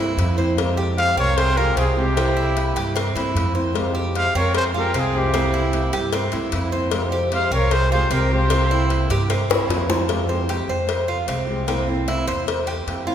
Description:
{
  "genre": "latin, Cuban son and guajira",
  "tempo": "151 BPM",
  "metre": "4/4",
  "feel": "straight",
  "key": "F harmonic minor, F minor from 10.1 s",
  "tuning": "A4 = 440 Hz",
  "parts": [
    { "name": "flamenco guitar", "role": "accompaniment", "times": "0.0-13.1 s", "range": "C3 to G4", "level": "-26 LUFS", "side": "left 1 dB", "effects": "none" },
    { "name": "Cuban tres", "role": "arpeggios", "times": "0.0-13.1 s", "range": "C4 to C5", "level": "-26 LUFS", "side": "right 2 dB", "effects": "none" },
    { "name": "upright bass", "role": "bass", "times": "0.0-13.1 s", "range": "C2 to G2", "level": "-23 LUFS", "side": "right 1 dB", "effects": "none" },
    { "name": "cowbell and bongos", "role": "percussion", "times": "0.2-13.1 s", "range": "none", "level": "-27 LUFS", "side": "left 4 dB", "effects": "none" },
    { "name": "breathy trumpet", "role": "melody", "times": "1.0-9.1 s", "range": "G4 to F5", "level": "-24 LUFS", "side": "equal", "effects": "none" },
    { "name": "dark studio violin section", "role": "second line", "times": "1.0-9.1 s", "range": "E4 to C5", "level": "-31 LUFS", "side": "equal", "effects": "none" }
  ],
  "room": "wet church reverb, RT60 3.0 s",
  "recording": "recorded in a church or concert hall",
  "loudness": "-18 LUFS",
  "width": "side -9 dB against mid",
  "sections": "0.0-10.1 A section; 10.1-13.1 B section",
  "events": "drum fill 9.5-10.1",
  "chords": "0.0 C7; 0.6 Fmadd9; 2.2 C7; 3.8 Fmadd9; 5.3 C7; 6.9 Fmadd9; 8.5 C7; 10.1 Fmadd9; 11.7 C7"
}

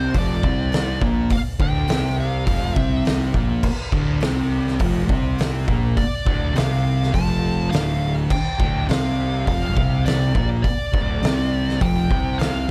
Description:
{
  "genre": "stoner and doom metal",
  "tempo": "103 BPM",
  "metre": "4/4",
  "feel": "straight",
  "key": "D minor",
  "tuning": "A4 = 440 Hz",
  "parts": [
    { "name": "fuzz lead guitar", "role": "melody", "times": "0.0-12.7 s", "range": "C5 to A5", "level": "-30 LUFS", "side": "equal", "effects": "wah, distortion, delay" },
    { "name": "thick fuzz guitar", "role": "riff", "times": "0.0-12.7 s", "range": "D2 to C4", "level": "-28 LUFS", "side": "equal", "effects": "distortion" },
    { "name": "thick fuzz guitar", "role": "riff", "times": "0.0-12.7 s", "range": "D2 to C4", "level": "-28 LUFS", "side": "equal", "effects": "distortion" },
    { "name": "fuzz picked electric bass", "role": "bass", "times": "0.0-12.7 s", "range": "D1 to C2", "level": "-27 LUFS", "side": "equal", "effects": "overdrive, tube saturation" },
    { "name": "oversized low-tuned drum kit", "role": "drums", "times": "0.1-12.5 s", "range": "crash cymbal, hi-hat, kick drum, snare drum", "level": "-25 LUFS", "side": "equal", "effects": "none" }
  ],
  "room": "small room ambience",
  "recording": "dark, warm production",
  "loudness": "-21 LUFS",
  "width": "mono",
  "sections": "0.0-12.7 A section",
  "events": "none",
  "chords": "0.0 Dm"
}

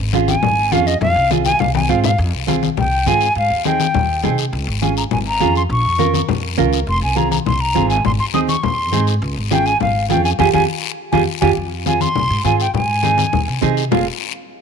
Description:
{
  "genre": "latin, cumbia",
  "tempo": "204 BPM",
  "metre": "4/4",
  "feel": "straight",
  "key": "F minor",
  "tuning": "A4 = 440 Hz",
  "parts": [
    { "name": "upright bass", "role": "bass", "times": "0.0-14.1 s", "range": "F1 to C3", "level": "-21 LUFS", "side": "equal", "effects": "none" },
    { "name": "nylon-string guitar", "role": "accompaniment", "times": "0.1-14.1 s", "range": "C4 to Bb4", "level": "-20 LUFS", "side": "right 11 dB", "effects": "none" },
    { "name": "congas", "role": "percussion", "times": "0.1-14.0 s", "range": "none", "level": "-21 LUFS", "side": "left 11 dB", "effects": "none" },
    { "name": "guiro", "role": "percussion", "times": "0.1-14.0 s", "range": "none", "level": "-28 LUFS", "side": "left 15 dB", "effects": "none" },
    { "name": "hollow concert flute", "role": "melody", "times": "0.3-14.1 s", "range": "Eb5 to Eb6", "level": "-19 LUFS", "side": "equal", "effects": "none" }
  ],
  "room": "light reverb",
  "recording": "1960s-style stereo with parts hard left and right",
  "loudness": "-14 LUFS",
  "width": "side -6 dB against mid",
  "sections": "0.0-2.2 A section; 2.2-11.6 B section; 11.6-13.9 C section",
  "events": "flute solo 0.0-2.2; drum fill 1.7-2.2; band accent 10.4-11.6",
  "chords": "0.0 Db; 1.0 Fm; 3.4 Ab; 4.5 Db; 5.7 Bbm; 6.9 Fm; 8.0 Ab; 9.2 Db; 10.4 Fmadd9; 11.6 Fm; 12.7 Ab; 13.9 Fm"
}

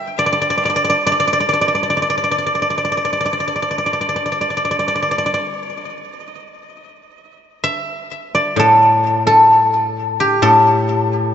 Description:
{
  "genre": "chinese traditional, Chinese solo plucked strings",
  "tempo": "58-70 BPM",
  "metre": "4/4",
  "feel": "rubato",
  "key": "unclear",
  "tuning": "A4 = 444 Hz",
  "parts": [
    { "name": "guzheng", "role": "solo", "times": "0.0-11.3 s", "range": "A2 to G5", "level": "-14 LUFS", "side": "equal", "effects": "ping-pong delay" }
  ],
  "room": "wet plate reverb, RT60 3.6 s",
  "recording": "dreamy mix soaked in reverb, nothing above 7.9 kHz",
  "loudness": "-13 LUFS",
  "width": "side -9 dB against mid",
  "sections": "0.0-6.7 A section; 6.7-11.3 B section",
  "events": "none",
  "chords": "none"
}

